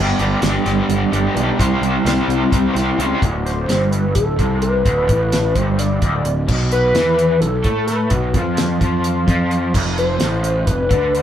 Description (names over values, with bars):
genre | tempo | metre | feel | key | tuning
psychedelic rock | 258 BPM (eighths) | 7/8 | straight | D dorian | A4 = 440 Hz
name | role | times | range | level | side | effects
crunchy overdriven guitar | riff | 0.0-11.2 s | D2 to C5 | -19 LUFS | equal | harmonic tremolo
fuzz picked electric bass | bass | 0.0-11.2 s | D1 to A2 | -20 LUFS | equal | overdrive
damped 70s drum kit | drums | 0.2-11.2 s | crash cymbal, hi-hat, kick drum, snare drum | -21 LUFS | equal | none
pulse-width lead | melody | 3.5-11.2 s | A4 to D5 | -19 LUFS | left 1 dB | chorus
room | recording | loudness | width
moderate studio ambience, RT60 0.5 s | band playing live in one room | -15 LUFS | side -10 dB against mid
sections
0.0-3.2 A section; 3.2-11.2 B section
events
analog synth lead solo 3.2-11.2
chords
0.0 G; 1.6 C; 3.2 D5; 6.5 Fmaj7#11/B; 9.7 F5